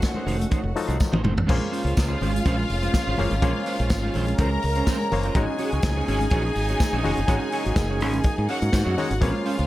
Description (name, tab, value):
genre	disco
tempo	124 BPM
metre	4/4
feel	straight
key	unclear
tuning	A4 = 439 Hz
part	clear studio string section	second line	0.0-9.7 s	F4 to Bb5	-29 LUFS	equal	none
part	clean electric guitar	accompaniment	0.0-9.7 s	Ab3 to Db5	-29 LUFS	right 3 dB	analog chorus
part	mellow clav	accompaniment	0.0-9.7 s	F3 to Db5	-30 LUFS	left 5 dB	auto-wah
part	warm French horn section	sustained chords	0.0-9.7 s	Db3 to Gb4	-32 LUFS	right 1 dB	none
part	vintage drum kit	drums	0.0-9.7 s	crash cymbal, hi-hat, kick drum, snare drum, toms	-25 LUFS	equal	gated reverb
part	congas	percussion	0.0-9.6 s	none	-34 LUFS	left 4 dB	none
part	tambourine	percussion	0.0-8.9 s	none	-41 LUFS	right 3 dB	none
part	modern bright fingered electric bass	bass	0.3-9.7 s	F1 to Ab2	-25 LUFS	equal	none
room	small room reverb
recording	none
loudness	-21 LUFS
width	side -16 dB against mid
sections	0.0-1.5 A section; 1.5-9.7 B section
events	drum fill 1.0-1.5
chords	0.0 F7b9; 1.5 Bbm9; 5.4 Ab7sus4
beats	0.03 0.52 1.00 | 1.49 1.97 2.46 2.94 | 3.42 3.91 4.39 4.87 | 5.36 5.84 6.32 6.80 | 7.29 7.77 8.25 8.73 | 9.22